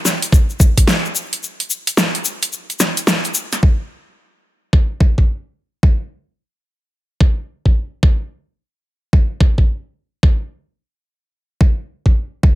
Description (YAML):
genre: glitch hop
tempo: 109 BPM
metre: 4/4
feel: swing 64% on 16ths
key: none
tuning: none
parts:
  - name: dubstep drum kit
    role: drums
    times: 0.1-3.6 s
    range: hi-hat, snare drum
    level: -17 LUFS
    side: equal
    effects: overdrive, low-pass filter on hats, low-pass filter on snare, low-pass filter on room
  - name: tube shaker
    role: percussion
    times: 0.1-3.6 s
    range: none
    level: -22 LUFS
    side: left 5 dB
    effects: none
  - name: electronic kick drum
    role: drums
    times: 0.3-12.6 s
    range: none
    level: -12 LUFS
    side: equal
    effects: overdrive
room: digital ambience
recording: none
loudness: -14 LUFS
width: side -16 dB against mid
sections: 0.0-3.6 A section; 3.6-12.6 B section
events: break 1.4-3.6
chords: none